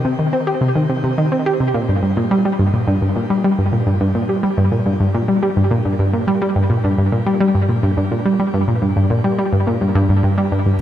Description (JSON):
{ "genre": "ambient", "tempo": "106 BPM", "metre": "4/4", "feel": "straight", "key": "G minor", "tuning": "A4 = 440 Hz", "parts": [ { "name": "analog pluck", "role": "riff", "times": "0.0-10.7 s", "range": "G2 to G4", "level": "-14 LUFS", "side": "equal", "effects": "chorus, tape echo" } ], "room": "moderate shimmer reverb, RT60 7.0 s", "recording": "none", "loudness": "-14 LUFS", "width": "side -11 dB against mid", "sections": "0.0-10.8 A section", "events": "none", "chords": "none" }